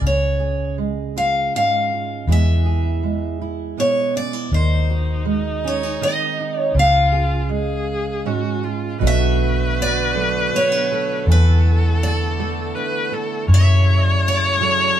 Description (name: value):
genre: acoustic folk-pop ballad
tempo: 80 BPM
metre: 3/4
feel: straight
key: unclear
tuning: A4 = 440 Hz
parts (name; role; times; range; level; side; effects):
- picked steel-string acoustic guitar; melody; 0.0-15.0 s; B4 to E#5; -22 LUFS; equal; none
- fingerpicked steel-string acoustic guitar; accompaniment; 0.0-15.0 s; F#2 to A4; -24 LUFS; right 6 dB; none
- vintage muted fingered electric bass; bass; 0.0-14.9 s; B1 to F#2; -18 LUFS; equal; none
- warm viola; second line; 4.5-15.0 s; D#4 to C#5; -23 LUFS; left 2 dB; none
- pedal harmonium; sustained chords; 9.0-15.0 s; C#3 to F#4; -31 LUFS; right 1 dB; none
room: light reverb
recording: band playing live in one room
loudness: -16 LUFS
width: side -10 dB against mid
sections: 0.0-9.0 A section; 9.0-15.0 B section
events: none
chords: 0.0 C#; 2.3 E; 4.5 G#7/D#; 6.8 C#; 9.0 Bm7; 11.3 E7sus4; 13.5 F#m7